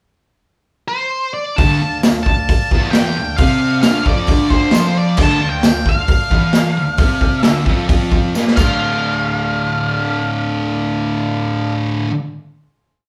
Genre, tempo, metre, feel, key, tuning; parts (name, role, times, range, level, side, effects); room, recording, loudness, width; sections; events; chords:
garage rock duo or trio; 132 BPM; 4/4; straight; D minor; A4 = 440 Hz
octave-fuzz lead guitar; melody; 0.9-11.7 s; C5 to A5; -22 LUFS; equal; distortion
combo organ; sustained chords; 1.6-11.8 s; A4 to F5; -30 LUFS; equal; spring reverb
thick fuzz guitar; riff; 1.6-12.1 s; D2 to C4; -20 LUFS; equal; distortion
raw garage drum kit; drums; 1.6-8.7 s; crash cymbal, hi-hat, kick drum, snare drum; -18 LUFS; equal
tambourine; percussion; 2.0-9.0 s; -35 LUFS; equal
moderate large studio reverb, RT60 0.7 s; band playing live in one room; -16 LUFS; mono
0.0-1.6 pickup bar; 1.6-8.8 pre-chorus; 8.8-12.5 final hit
drum fill 8.3-8.8
0.0 N.C.; 1.6 Dm